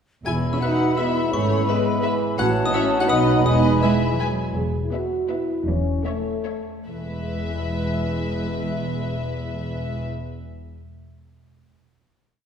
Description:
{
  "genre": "cinematic, playful, whimsical film cue",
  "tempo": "141-171 BPM",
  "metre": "3/4",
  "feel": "straight",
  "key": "E major",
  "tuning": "A4 = 440 Hz",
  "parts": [
    { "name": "mellow French horn section", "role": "sustained chords", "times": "0.2-10.0 s", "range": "E3 to G#4", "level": "-27 LUFS", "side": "equal", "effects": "none" },
    { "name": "dark studio violin section", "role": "melody", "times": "0.3-10.0 s", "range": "B4 to G#5", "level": "-31 LUFS", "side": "left 4 dB", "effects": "none" },
    { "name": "xylophone with wooden mallets", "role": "melody", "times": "0.3-4.2 s", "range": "B5 to G#6", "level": "-30 LUFS", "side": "left 2 dB", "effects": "none" },
    { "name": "bright silver concert flute", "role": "second line", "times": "0.3-4.4 s", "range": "A5 to B5", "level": "-28 LUFS", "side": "left 3 dB", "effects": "none" },
    { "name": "dark clarinet", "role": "second line", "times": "0.3-4.4 s", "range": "B4 to C#5", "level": "-32 LUFS", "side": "equal", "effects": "none" },
    { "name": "dark cor anglais", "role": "second line", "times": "0.3-4.4 s", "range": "E5 to G#5", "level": "-32 LUFS", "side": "left 2 dB", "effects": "none" },
    { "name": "dark studio viola section", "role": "accompaniment", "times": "0.3-10.0 s", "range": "G#3 to E4", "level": "-29 LUFS", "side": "right 1 dB", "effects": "none" },
    { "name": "dark studio cello section", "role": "bass", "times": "0.3-10.0 s", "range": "E2 to G#3", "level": "-29 LUFS", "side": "right 2 dB", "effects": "none" },
    { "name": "dark studio double bass section", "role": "bass", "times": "0.3-10.0 s", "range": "E1 to B1", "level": "-27 LUFS", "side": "right 1 dB", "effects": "none" },
    { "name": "rich studio violin section", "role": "second line", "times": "0.6-10.0 s", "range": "B4 to G#5", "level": "-34 LUFS", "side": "left 3 dB", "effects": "none" },
    { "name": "mellow bassoon", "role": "accompaniment", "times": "0.6-4.4 s", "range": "E3 to B3", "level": "-29 LUFS", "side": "equal", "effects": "none" }
  ],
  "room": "wet scoring stage reverb, RT60 1.8 s",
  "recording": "heard from further back in the room",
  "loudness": "-20 LUFS",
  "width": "side -7 dB against mid",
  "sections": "0.3-4.6 A section; 4.6-6.9 coda; 6.9-9.4 final chord",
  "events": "slowing down 4.0-6.9",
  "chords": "0.3 E; 1.3 E/G#; 2.4 F#m/A; 3.1 B; 3.5 E; 4.6 E5; 5.7 A/E; 6.9 E",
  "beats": "| 0.26 0.62 0.98 | 1.33 1.69 2.04 | 2.39 2.74 3.10 | 3.46 3.83 4.20 | 4.57 4.93 5.30 | 5.68 6.06 6.46 | 6.88 7.30 7.72 | 8.14 8.56 8.98"
}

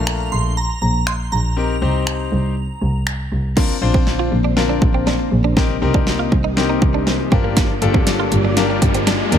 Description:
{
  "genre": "dance-pop",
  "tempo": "120 BPM",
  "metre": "4/4",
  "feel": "straight",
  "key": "Bb major",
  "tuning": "A4 = 440 Hz",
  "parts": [
    { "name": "shimmering bell with halo", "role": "melody", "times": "0.0-3.0 s", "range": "Bb5 to C6", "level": "-26 LUFS", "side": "right 3 dB", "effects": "ensemble chorus, dub echo" },
    { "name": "bright concert grand piano", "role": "accompaniment", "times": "0.0-9.4 s", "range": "A3 to C5", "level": "-22 LUFS", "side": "left 9 dB", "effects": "sidechain pumping" },
    { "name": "rich double bass", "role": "bass", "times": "0.0-9.4 s", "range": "G1 to Eb2", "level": "-20 LUFS", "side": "equal", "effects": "sidechain pumping" },
    { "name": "pop drum kit", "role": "drums", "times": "0.1-9.4 s", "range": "crash cymbal, finger snaps, hi-hat, kick drum, snare drum", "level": "-18 LUFS", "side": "equal", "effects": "overdrive" },
    { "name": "ensemble organ-string", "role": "sustained chords", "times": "3.6-9.4 s", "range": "C3 to D5", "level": "-24 LUFS", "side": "equal", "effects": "ensemble chorus, sidechain pumping" },
    { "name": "direct-recorded clean electric guitar", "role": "riff", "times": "3.6-9.2 s", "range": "Bb3 to F4", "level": "-26 LUFS", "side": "right 9 dB", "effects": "analog chorus" },
    { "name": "riser", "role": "sound effects", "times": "6.4-9.4 s", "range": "none", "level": "-27 LUFS", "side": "right 1 dB", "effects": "none" }
  ],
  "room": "digital ambience",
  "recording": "none",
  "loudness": "-15 LUFS",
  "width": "side -9 dB against mid",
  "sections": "0.0-3.6 A section; 3.6-9.4 B section",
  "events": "kick muted 2.6-3.6; build-up 3.6-9.4; drum fill 3.6-9.4; riser 6.4-9.4",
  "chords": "0.0 Bbmaj7; 1.6 Cm7; 3.6 Bbadd9; 5.6 Cm7; 7.3 Gm7",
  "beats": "0.07 0.57 1.07 | 1.57 2.07 2.57 3.07 | 3.57 4.07 4.57 5.07 | 5.57 6.07 6.57 7.07 | 7.57 8.07 8.57 9.07"
}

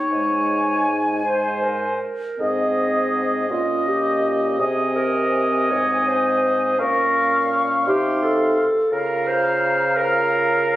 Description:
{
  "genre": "classical, slow romantic movement for wind quintet",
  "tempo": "50-58 BPM (dotted quarters)",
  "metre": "6/8",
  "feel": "rubato",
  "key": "Ab major",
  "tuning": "A4 = 440 Hz",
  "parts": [
    { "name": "warm oboe", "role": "second line", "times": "0.0-10.8 s", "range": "C5 to F5", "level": "-23 LUFS", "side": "equal", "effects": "none" },
    { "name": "mellow clarinet", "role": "accompaniment", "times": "0.0-10.8 s", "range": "Eb4 to Db5", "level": "-22 LUFS", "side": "right 1 dB", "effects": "none" },
    { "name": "concert flute", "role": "melody", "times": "0.1-10.8 s", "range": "Eb5 to Db6", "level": "-26 LUFS", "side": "left 2 dB", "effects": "none" },
    { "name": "mellow French horn", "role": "accompaniment", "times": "0.1-10.8 s", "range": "Ab3 to F4", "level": "-29 LUFS", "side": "left 1 dB", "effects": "none" },
    { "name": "warm bassoon", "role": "bass", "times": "0.1-10.8 s", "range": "Ab2 to Db3", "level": "-26 LUFS", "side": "right 1 dB", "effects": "none" }
  ],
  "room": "wet recital hall reverb, RT60 1.5 s",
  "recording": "recorded on a phone in the room, club reverb",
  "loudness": "-18 LUFS",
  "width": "side -14 dB against mid",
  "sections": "0.0-2.4 A section; 2.4-10.8 B section",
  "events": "none",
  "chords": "0.1 Ab; 3.5 Eb7/Bb; 4.6 Ab/C; 6.8 Bbm; 7.9 F7/C; 8.9 Bbm/Db",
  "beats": "| 0.10 1.24 | 2.41 3.50 | 4.60 5.71 | 6.79 7.87 | 8.93 9.97"
}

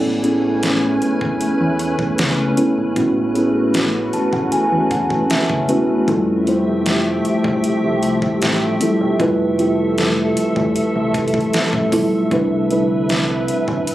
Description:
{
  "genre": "contemporary R&B",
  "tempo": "77 BPM",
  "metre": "4/4",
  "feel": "straight",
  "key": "unclear",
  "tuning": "A4 = 439 Hz",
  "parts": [
    { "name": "muted felt-like synth keys", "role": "accompaniment", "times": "0.0-13.9 s", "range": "G3 to A5", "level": "-18 LUFS", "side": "equal", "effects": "chorus" },
    { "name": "glassy FM pad", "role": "sustained chords", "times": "0.0-13.9 s", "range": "D3 to G#5", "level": "-21 LUFS", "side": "left 1 dB", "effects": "ensemble chorus, built-in reverb, sidechain pumping" },
    { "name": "deep dub fingered electric bass", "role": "bass", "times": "0.0-13.9 s", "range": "E1 to E2", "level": "-25 LUFS", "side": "equal", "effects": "none" },
    { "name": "smooth R&B drum kit", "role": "drums", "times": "0.2-13.9 s", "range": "hi-hat, kick drum, snare drum", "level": "-23 LUFS", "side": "equal", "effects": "none" }
  ],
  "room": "little or no reverb",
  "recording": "recorded on a phone in the room, club reverb, compression",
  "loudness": "-15 LUFS",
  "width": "side -14 dB against mid",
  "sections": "0.0-13.9 A section",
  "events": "synth keys fill 3.7-6.1",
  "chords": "0.0 Amaj9; 6.1 Fmaj9; 12.3 Cmaj9",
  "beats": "0.63 1.41 2.19 | 2.96 3.74 4.52 5.30 | 6.08 6.86 7.64 8.42 | 9.20 9.98 10.76 11.54 | 12.31 13.09 13.87"
}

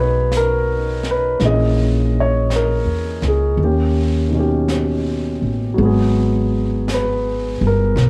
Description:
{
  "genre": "jazz ballad",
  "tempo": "55 BPM",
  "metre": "4/4",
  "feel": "swing 68% on 8ths",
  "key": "G# minor",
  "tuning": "A4 = 441 Hz",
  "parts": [
    { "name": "warm grand piano", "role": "accompaniment", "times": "0.0-8.1 s", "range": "B2 to D#5", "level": "-21 LUFS", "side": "equal", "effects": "cassette tape" },
    { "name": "upright bass", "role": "bass", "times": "0.0-8.1 s", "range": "G1 to E2", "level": "-20 LUFS", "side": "equal", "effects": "none" },
    { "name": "jazz brush drum kit", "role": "drums", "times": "0.3-8.1 s", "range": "brushed snare drum, hi-hat, snare drum", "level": "-34 LUFS", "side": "equal", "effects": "none" }
  ],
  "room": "little or no reverb",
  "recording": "home recording on cassette",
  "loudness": "-18 LUFS",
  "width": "mono",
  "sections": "0.0-5.8 A section; 5.8-8.1 B section",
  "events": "none",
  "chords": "0.0 G#m9; 1.4 A#m7b5; 3.6 D#7b13; 5.8 G#m7",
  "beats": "0.32 | 1.41 2.50 3.58 4.68 | 5.78 6.87 7.95"
}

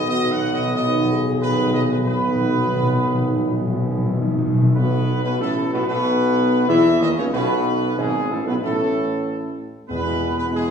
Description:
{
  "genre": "classical",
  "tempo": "93 BPM",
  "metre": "4/4",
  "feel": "straight",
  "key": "unclear",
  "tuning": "A4 = 443 Hz",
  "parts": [
    { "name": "clear trumpet section", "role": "melody", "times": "0.0-10.7 s", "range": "G#4 to F#5", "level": "-25 LUFS", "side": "equal", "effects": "none" },
    { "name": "bright trombone section", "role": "sustained chords", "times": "0.0-10.7 s", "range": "G#2 to B3", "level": "-24 LUFS", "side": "right 2 dB", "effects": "none" },
    { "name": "clear tuba", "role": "bass", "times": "0.0-10.7 s", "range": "G#1 to E2", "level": "-23 LUFS", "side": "right 1 dB", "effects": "none" },
    { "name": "timpani", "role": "percussion", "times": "0.0-4.7, 9.9-10.7 s", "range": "E2 to B2", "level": "-23 LUFS", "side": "left 1 dB", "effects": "none" },
    { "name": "mellow French horn section", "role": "sustained chords", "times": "0.1-10.7 s", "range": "G#3 to G#4", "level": "-26 LUFS", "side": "left 4 dB", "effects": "none" }
  ],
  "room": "wet recital hall reverb, RT60 1.3 s",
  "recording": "recorded in a church or concert hall, small room ambience",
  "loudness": "-17 LUFS",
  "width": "side -7 dB against mid",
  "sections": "0.0-4.7 A section; 4.7-10.7 B section",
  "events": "timpani fill 0.0-4.7",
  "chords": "0.0 B; 4.7 Asus2; 9.9 E",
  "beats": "0.10 0.74 1.40 | 2.06 2.73 3.40 4.07 | 4.75 5.40 6.05 6.69 | 7.34 7.98 8.62 9.26 | 9.90 10.54"
}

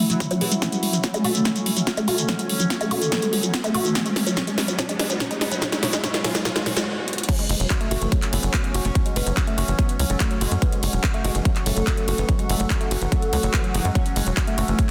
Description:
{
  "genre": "psychedelic trance",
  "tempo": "144 BPM",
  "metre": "4/4",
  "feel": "straight",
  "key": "F# minor",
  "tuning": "A4 = 439 Hz",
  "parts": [
    { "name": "overtone-sweeping drone", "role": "sustained chords", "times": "0.0-14.9 s", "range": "F#3 to F#4", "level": "-35 LUFS", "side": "equal", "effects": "chorus, built-in reverb, sidechain pumping" },
    { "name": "woody wave-folded pluck", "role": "riff", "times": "0.0-14.8 s", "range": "E3 to G#4", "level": "-29 LUFS", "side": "equal", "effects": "chorus, sidechain pumping, dub echo" },
    { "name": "warbly tape-like pad", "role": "texture", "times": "0.0-14.9 s", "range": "C#4 to G#5", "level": "-40 LUFS", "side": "equal", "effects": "none" },
    { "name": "oud", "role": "melody", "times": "0.1-14.8 s", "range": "E3 to C#4", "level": "-31 LUFS", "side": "equal", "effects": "phaser, sidechain pumping, dub echo" },
    { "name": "big-room dance drum kit", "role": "drums", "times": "0.1-14.9 s", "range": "crash cymbal, handclaps, hi-hat, ride cymbal, snare drum", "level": "-29 LUFS", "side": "equal", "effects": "studio reverb, soft clipping on snare" },
    { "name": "shekere", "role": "percussion", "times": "0.1-6.8 s", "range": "none", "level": "-33 LUFS", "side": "equal", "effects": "none" },
    { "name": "electronic kick drum", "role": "drums", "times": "0.2-14.9 s", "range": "none", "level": "-25 LUFS", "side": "equal", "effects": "high-pass filter on kick, studio reverb" },
    { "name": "riser", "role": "sound effects", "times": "2.8-6.9 s", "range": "none", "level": "-37 LUFS", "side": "equal", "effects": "none" },
    { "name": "tight sequencer bass", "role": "bass", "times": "7.5-14.7 s", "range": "E1 to F#2", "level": "-26 LUFS", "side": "equal", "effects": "none" }
  ],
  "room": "moderate lush hall reverb, RT60 2.2 s",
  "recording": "dense, heavily limited modern master",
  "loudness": "-22 LUFS",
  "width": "mono",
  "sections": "0.0-7.3 A section; 7.3-14.9 B section",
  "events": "build-up 0.0-7.3; filter sweep on synth arpeggio sound 0.0-7.3; drum fill 0.6-6.9, 7.1; drop 7.3-14.9",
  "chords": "0.0 F#5",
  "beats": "0.20 | 0.62 1.04 1.45 1.87 | 2.29 2.70 3.12 3.54 | 3.95 4.37 4.79 5.20 | 5.62 6.04 6.45 6.87 | 7.29 7.70 8.12 8.54 | 8.95 9.37 9.79 10.20 | 10.62 11.04 11.45 11.87 | 12.29 12.70 13.12 13.54 | 13.95 14.37 14.79"
}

